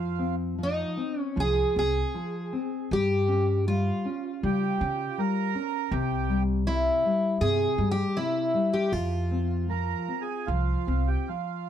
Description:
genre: fado-style ballad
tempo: 78 BPM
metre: 4/4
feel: rubato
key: F minor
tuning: A4 = 440 Hz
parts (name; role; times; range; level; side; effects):
- mellow accordion; second line; 0.0-11.7 s; F4 to Bb4; -32 LUFS; right 9 dB; none
- nylon-string guitar; accompaniment; 0.0-11.7 s; C3 to Db4; -30 LUFS; left 3 dB; none
- upright bass; bass; 0.0-11.1 s; C2 to Db3; -28 LUFS; right 1 dB; none
- fingerpicked twelve-string acoustic guitar; melody; 0.6-11.3 s; Eb4 to Ab4; -28 LUFS; equal; plate reverb
room: light reverb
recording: dark, warm production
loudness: -24 LUFS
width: side -10 dB against mid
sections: 0.0-11.7 A section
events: none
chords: 0.0 Fm7; 2.9 Gdim; 5.9 C; 8.9 F5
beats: 0.59 1.37 2.15 | 2.91 3.67 4.43 5.18 | 5.91 6.65 7.40 8.16 | 8.92 9.69 10.47 11.28

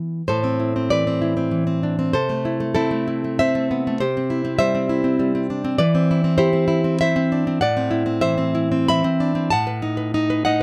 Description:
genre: romantic piece for solo classical guitar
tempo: 87-102 BPM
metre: 3/4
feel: rubato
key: A minor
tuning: A4 = 441 Hz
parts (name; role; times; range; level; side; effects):
- nylon-string guitar; solo; 0.0-10.6 s; A2 to B5; -20 LUFS; equal; none
room: light reverb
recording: none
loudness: -20 LUFS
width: mono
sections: 0.3-10.6 A section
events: none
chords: 0.3 Am; 2.1 Am/C; 4.0 C; 5.8 C/E; 7.6 Am; 9.5 B7/A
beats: | 0.28 0.91 1.52 | 2.14 2.75 3.39 | 4.01 4.61 5.20 | 5.79 6.39 7.00 | 7.62 8.23 8.89 | 9.51 10.14

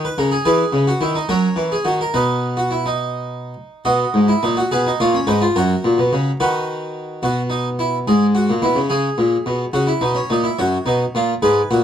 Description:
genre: classical, baroque-style 3-part fugue for harpsichord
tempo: 71 BPM (dotted quarters)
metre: 6/8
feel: straight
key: B major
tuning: A4 = 440 Hz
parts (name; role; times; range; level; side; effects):
- harpsichord; solo; 0.0-11.8 s; F#2 to D#5; -16 LUFS; equal; none
room: light reverb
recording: dark, warm production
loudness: -16 LUFS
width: side -9 dB against mid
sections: 0.0-3.9 A section; 3.9-7.2 B section; 7.2-11.8 A section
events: none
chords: 0.4 C#m; 1.3 F#7; 2.1 B; 4.7 C#7; 5.6 F#; 6.4 B/D#; 7.2 B; 8.1 G#m; 8.9 C#5; 9.7 A#dim; 10.6 Gb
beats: | 0.44 1.28 | 2.14 3.00 | 3.86 4.71 | 5.55 6.39 | 7.23 8.07 | 8.91 9.74 | 10.57 11.42

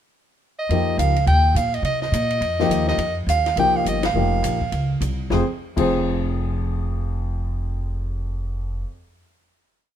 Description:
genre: modal jazz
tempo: 208 BPM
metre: 4/4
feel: swing 60% on 8ths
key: F minor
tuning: A4 = 439 Hz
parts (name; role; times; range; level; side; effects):
- breathy soprano saxophone; melody; 0.6-5.0 s; Eb5 to G5; -22 LUFS; right 2 dB; none
- warm baby grand piano; accompaniment; 0.7-8.9 s; F2 to C5; -24 LUFS; left 3 dB; none
- upright bass; bass; 0.7-8.8 s; F1 to C3; -22 LUFS; equal; none
- compact cocktail drum kit; drums; 0.7-5.8 s; crash cymbal, hi-hat, kick drum, ride cymbal, snare drum; -31 LUFS; left 2 dB; none
room: moderate studio reverb, RT60 0.9 s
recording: minimal, uncompressed stereo recording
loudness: -19 LUFS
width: side -10 dB against mid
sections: 0.0-0.7 pickup bar; 0.7-5.3 A section; 5.3-7.6 final chord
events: band accent 4.0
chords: 0.0 N.C.; 0.7 F9sus4; 5.3 Fm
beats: 0.12 0.41 | 0.70 0.98 1.27 1.56 | 1.84 2.13 2.42 2.71 | 2.99 3.28 3.57 3.86 | 4.15 4.43 4.72 5.01 | 5.30 5.59 5.88 6.17 | 6.46 6.74 7.03 7.32

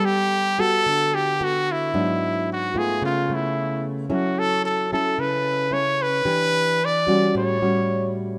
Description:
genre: bossa nova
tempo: 111 BPM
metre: 4/4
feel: straight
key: unclear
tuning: A4 = 440 Hz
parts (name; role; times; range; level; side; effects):
- bright trumpet; melody; 0.0-8.1 s; E4 to D5; -24 LUFS; equal; none
- nylon-string guitar; accompaniment; 0.0-8.4 s; G#2 to B4; -26 LUFS; equal; none
room: moderate plate reverb, RT60 3.0 s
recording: none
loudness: -22 LUFS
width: mono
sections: 0.0-8.4 A section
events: none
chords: 0.0 Gmaj9; 1.9 G#m7b5; 3.0 C#7alt; 4.1 F#m7; 6.3 Em7; 7.3 A6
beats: 0.31 0.85 1.39 | 1.93 2.48 3.02 3.56 | 4.10 4.64 5.18 5.72 | 6.26 6.80 7.34 7.88

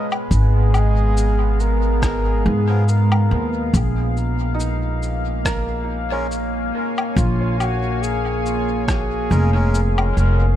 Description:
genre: ambient dub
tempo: 70 BPM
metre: 4/4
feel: swing 55% on 16ths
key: unclear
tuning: A4 = 440 Hz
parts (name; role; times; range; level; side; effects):
- trumpet with bucket mute; melody; 0.0-10.1 s; E#4 to D#5; -27 LUFS; equal; tape echo
- deep dark ambient pad; sustained chords; 0.0-10.6 s; G#3 to G#5; -25 LUFS; equal; chorus, built-in reverb, vintage 12-bit sampler grit
- electronic woodblock, cabasa and rim click; drums; 0.1-10.4 s; none; -28 LUFS; left 2 dB; overdrive, dub echo
- upright bass; bass; 0.3-10.6 s; E#1 to G#2; -18 LUFS; equal; none
- electronic kick drum; drums; 0.3-9.1 s; none; -23 LUFS; equal; none
- melodica; stabs; 2.7-9.8 s; E#3 to A#4; -31 LUFS; left 2 dB; dub echo
- felt-muted upright piano; arpeggios; 4.5-10.6 s; D#4 to C#5; -32 LUFS; right 4 dB; tape echo
room: small room ambience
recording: echo-heavy mix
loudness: -17 LUFS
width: side -12 dB against mid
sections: 0.0-10.6 A section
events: none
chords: 0.0 G#m69; 3.7 A#m7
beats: | 0.31 1.17 2.03 2.88 | 3.74 4.60 5.46 6.31 | 7.17 8.03 8.88 9.74

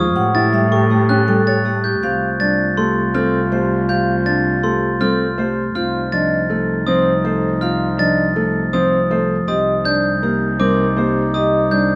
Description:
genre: classical, minimalist pattern music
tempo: 161 BPM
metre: 5/4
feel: straight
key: unclear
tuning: A4 = 441 Hz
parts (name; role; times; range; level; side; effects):
- vibraphone with medium mallets; melody; 0.0-12.0 s; G4 to Gb5; -25 LUFS; equal; none
- Celtic harp; accompaniment; 0.0-12.0 s; F3 to C#4; -24 LUFS; equal; none
- dark concert grand piano; arpeggios; 0.0-12.0 s; C4 to C#5; -26 LUFS; equal; none
- glockenspiel with hard plastic mallets; arpeggios; 0.0-12.0 s; C6 to A6; -24 LUFS; equal; none
- dark cello; bass; 0.0-12.0 s; C2 to A2; -24 LUFS; equal; none
- warm French horn; second line; 0.2-12.0 s; Eb4 to G4; -27 LUFS; equal; none
room: light reverb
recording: close, detailed microphones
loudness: -17 LUFS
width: mono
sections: 0.0-2.0 A section; 2.0-12.0 B section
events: none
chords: 0.2 A7; 2.0 Dm7/C; 5.8 F7/C; 9.5 Cm7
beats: | 0.16 0.53 0.91 1.28 1.65 | 2.02 2.40 2.77 3.14 3.51 | 3.89 4.26 4.63 5.00 5.38 | 5.75 6.12 6.50 6.87 7.24 | 7.61 7.99 8.36 8.73 9.10 | 9.48 9.85 10.22 10.59 10.97 | 11.34 11.71

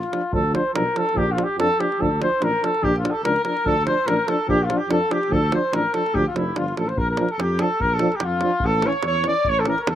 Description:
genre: balkan folk, Balkan brass band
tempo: 145 BPM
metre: 2/4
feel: swing 54% on 16ths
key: D minor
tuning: A4 = 444 Hz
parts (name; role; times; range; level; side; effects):
- mellow cornet; melody; 0.0-9.9 s; E4 to D5; -22 LUFS; equal; slapback echo
- clear alto saxophone; second line; 0.0-0.3, 2.8-9.9 s; E4 to D5; -29 LUFS; left 2 dB; none
- mellow tuba; bass; 0.0-9.9 s; F1 to F2; -26 LUFS; equal; none
- davul; percussion; 0.0-9.9 s; none; -29 LUFS; right 2 dB; slapback echo
- mellow euphonium; accompaniment; 0.1-9.7 s; E3 to F3; -28 LUFS; right 4 dB; none
- warm French horn; accompaniment; 0.1-9.7 s; C#4 to D4; -28 LUFS; left 4 dB; none
room: little or no reverb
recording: recorded outdoors, with no room sound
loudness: -19 LUFS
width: side -11 dB against mid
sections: 0.3-7.0 A section; 7.0-9.9 B section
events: none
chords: 0.3 Dm; 1.2 Bb; 2.0 Dm; 2.8 Bb; 3.7 Dm; 4.5 Bb; 5.3 Dm; 7.0 Bb; 8.6 A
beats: | 0.33 0.75 | 1.16 1.58 | 2.00 2.41 | 2.83 3.24 | 3.66 4.07 | 4.49 4.90 | 5.32 5.73 | 6.14 6.56 | 6.97 7.38 | 7.80 8.21 | 8.62 9.04 | 9.45 9.87

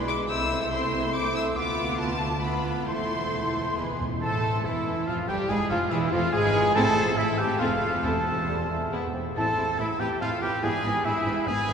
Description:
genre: quick classical-period movement for symphony orchestra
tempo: 132-146 BPM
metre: 3/4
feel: rubato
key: A minor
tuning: A4 = 438 Hz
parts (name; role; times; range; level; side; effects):
- bright clarinet; second line; 0.0-11.7 s; E4 to A4; -34 LUFS; equal; none
- clear studio violin section; second line; 0.0-11.7 s; F4 to E5; -38 LUFS; left 2 dB; none
- warm oboe; second line; 0.0-11.7 s; B4 to A5; -31 LUFS; right 1 dB; none
- mellow bassoon; accompaniment; 0.0-4.0, 8.5-9.2 s; G3 to C4; -37 LUFS; equal; none
- rich chamber viola section; accompaniment; 0.0-11.7 s; E3 to F4; -33 LUFS; right 1 dB; none
- dark French horn section; sustained chords; 0.0-10.8 s; E3 to A4; -34 LUFS; left 2 dB; none
- rich chamber double bass section; bass; 0.0-11.7 s; E1 to D2; -34 LUFS; right 2 dB; none
- warm chamber cello section; bass; 0.0-11.7 s; D2 to C3; -34 LUFS; right 2 dB; none
- rich chamber violin section; melody; 0.1-11.7 s; D4 to E6; -33 LUFS; left 3 dB; none
- silver concert flute; second line; 0.1-11.7 s; E5 to E6; -35 LUFS; left 1 dB; none
- timpani; percussion; 3.8-4.2, 6.8-10.0 s; E2 to A2; -38 LUFS; equal; none
- warm trumpet; stabs; 4.2-11.7 s; E4 to A4; -31 LUFS; right 1 dB; none
room: wet cathedral reverb, RT60 6.0 s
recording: recorded in a church or concert hall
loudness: -23 LUFS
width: side -7 dB against mid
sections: 0.0-4.2 A section; 4.2-11.7 B section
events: timpani fill 3.8-4.2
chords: 0.3 Am/C; 1.6 Bdim/D; 2.9 Am/E; 3.8 E; 4.2 Am; 5.5 E; 6.8 Am; 7.6 F; 8.0 Am/E; 8.9 E; 9.4 Am; 10.6 E7/G#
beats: | 0.30 0.72 1.14 | 1.57 2.00 2.43 | 2.87 3.32 3.77 | 4.22 4.66 5.08 | 5.50 5.91 6.33 | 6.75 7.18 7.61 | 8.04 8.48 8.93 | 9.37 9.79 10.21 | 10.63 11.05 11.47

